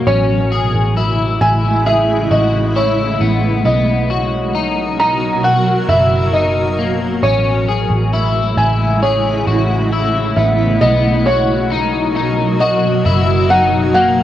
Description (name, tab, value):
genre	dream pop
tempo	67 BPM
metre	4/4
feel	straight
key	B major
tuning	A4 = 439 Hz
part	granular cloud pad	sustained chords	0.0-14.2 s	B2 to A#4	-18 LUFS	right 2 dB	built-in reverb, cassette tape
part	electric guitar at the edge of break-up	arpeggios	0.0-14.2 s	A#3 to G#4	-19 LUFS	left 6 dB	analog chorus, cassette tape, tape echo
part	vintage muted picked electric bass	bass	0.0-14.2 s	F#1 to B1	-18 LUFS	right 1 dB	none
part	felt-muted upright piano	melody	0.1-14.2 s	C#5 to A#5	-17 LUFS	equal	cassette tape, tape echo
part	vibraphone with medium mallets	texture	4.1-13.1 s	A#4 to F#5	-32 LUFS	right 7 dB	none
room	moderate spring reverb, RT60 2.0 s, small room ambience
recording	home recording on cassette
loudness	-12 LUFS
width	side -12 dB against mid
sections	0.0-10.8 A section; 10.8-14.2 B section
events	none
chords	0.1 Amaj7; 3.7 Bmaj7; 7.2 Amaj7; 10.8 Bmaj7